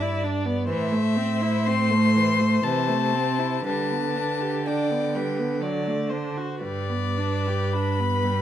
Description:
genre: classical, slow romantic movement for string quartet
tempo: 52-68 BPM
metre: 3/4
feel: rubato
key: G major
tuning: A4 = 440 Hz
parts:
  - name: clear violin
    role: melody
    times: 0.0-8.4 s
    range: D5 to C6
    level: -28 LUFS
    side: left 8 dB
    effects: none
  - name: rich violin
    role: second line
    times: 0.0-8.4 s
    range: B4 to D5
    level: -30 LUFS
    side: left 4 dB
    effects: none
  - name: clear viola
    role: accompaniment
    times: 0.0-8.4 s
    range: E3 to G4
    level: -29 LUFS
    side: right 1 dB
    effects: none
  - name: rich cello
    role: bass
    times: 0.0-8.4 s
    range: G2 to D3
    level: -25 LUFS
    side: right 3 dB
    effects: none
room: light reverb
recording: dark, warm production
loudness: -22 LUFS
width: side -11 dB against mid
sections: 0.0-8.4 A section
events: none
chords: 0.0 E7(no3)/G; 0.7 Am; 2.6 Am/C; 3.7 G/D; 5.6 D; 6.6 G

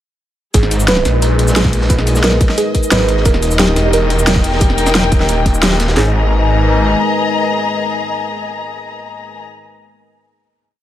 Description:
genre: dark technical drum and bass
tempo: 177 BPM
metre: 4/4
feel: straight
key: G# harmonic minor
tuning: A4 = 444 Hz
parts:
  - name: dark analog pad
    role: sustained chords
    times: 0.5-9.4 s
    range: G#3 to B4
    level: -21 LUFS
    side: equal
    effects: chorus, vintage 12-bit sampler grit, sidechain pumping
  - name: soft round pluck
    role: arpeggios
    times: 0.5-6.1 s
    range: G4 to B4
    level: -20 LUFS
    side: right 4 dB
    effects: chorus, sidechain pumping, digital delay
  - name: snarling distorted saw bass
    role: bass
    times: 0.5-6.9 s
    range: D#1 to A#1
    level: -15 LUFS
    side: equal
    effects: distortion, overdrive
  - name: crunchy breakbeat drum kit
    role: drums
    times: 0.5-6.0 s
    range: hi-hat, snare drum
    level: -26 LUFS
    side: equal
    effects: none
  - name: drum and bass drum kit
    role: drums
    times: 0.5-6.0 s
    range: kick drum, snare drum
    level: -14 LUFS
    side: equal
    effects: none
  - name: dubstep drum kit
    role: drums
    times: 0.5-5.9 s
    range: hi-hat, shaker, snare drum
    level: -17 LUFS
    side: equal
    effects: none
  - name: warm studio string section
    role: texture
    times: 0.5-9.4 s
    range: D#4 to A#5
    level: -19 LUFS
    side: left 4 dB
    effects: sidechain pumping
room: light reverb, small room ambience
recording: none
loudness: -11 LUFS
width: side -12 dB against mid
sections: 0.5-6.0 drop; 6.0-8.7 final chord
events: drop 0.5-6.0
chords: 0.5 G#madd9; 3.3 D#; 6.0 G#madd9

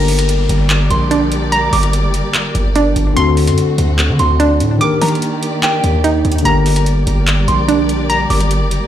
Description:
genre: hip hop, trap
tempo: 146 BPM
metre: 4/4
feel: half-time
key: G harmonic minor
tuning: A4 = 440 Hz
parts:
  - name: tine electric piano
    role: accompaniment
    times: 0.0-8.9 s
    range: D3 to Bb4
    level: -18 LUFS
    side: left 3 dB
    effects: overdrive, phaser
  - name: warm symphonic string section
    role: sustained chords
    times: 0.0-8.9 s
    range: D3 to D5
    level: -23 LUFS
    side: left 1 dB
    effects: none
  - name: hollow square pluck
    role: arpeggios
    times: 0.0-8.9 s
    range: D4 to D6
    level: -17 LUFS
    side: right 3 dB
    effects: chorus, ping-pong delay
  - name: hard-hitting 808-style bass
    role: bass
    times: 0.0-8.8 s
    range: F#1 to Eb3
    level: -16 LUFS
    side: equal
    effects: none
  - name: downlifter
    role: sound effects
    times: 0.0-3.2 s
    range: none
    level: -31 LUFS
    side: left 1 dB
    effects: none
  - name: booming analog drum machine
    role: drums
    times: 0.1-8.8 s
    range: handclaps, hi-hat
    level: -20 LUFS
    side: equal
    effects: none
  - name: soft synth bell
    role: second line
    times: 0.9-8.9 s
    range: G5 to D6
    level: -22 LUFS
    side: right 3 dB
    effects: chorus, phaser, ping-pong delay
room: digital ambience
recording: played on a big sound system in a bare room, large studio reverb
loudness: -12 LUFS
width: side -11 dB against mid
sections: 0.0-8.9 A section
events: none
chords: 0.0 Gm; 3.2 D7; 4.8 Ebmaj7; 6.5 Gm

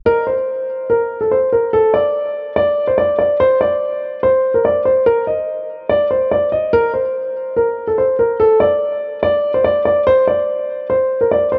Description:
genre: hip hop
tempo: 144 BPM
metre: 4/4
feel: half-time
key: unclear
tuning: A4 = 440 Hz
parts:
  - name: dark concert grand piano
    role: solo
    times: 0.0-11.6 s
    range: A4 to Eb5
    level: -16 LUFS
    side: equal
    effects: low-pass filter
room: moderate plate reverb, RT60 3.4 s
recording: dark, warm production, tape stop, nothing above 10.5 kHz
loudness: -16 LUFS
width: mono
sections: 0.1-11.6 A section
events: none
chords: none

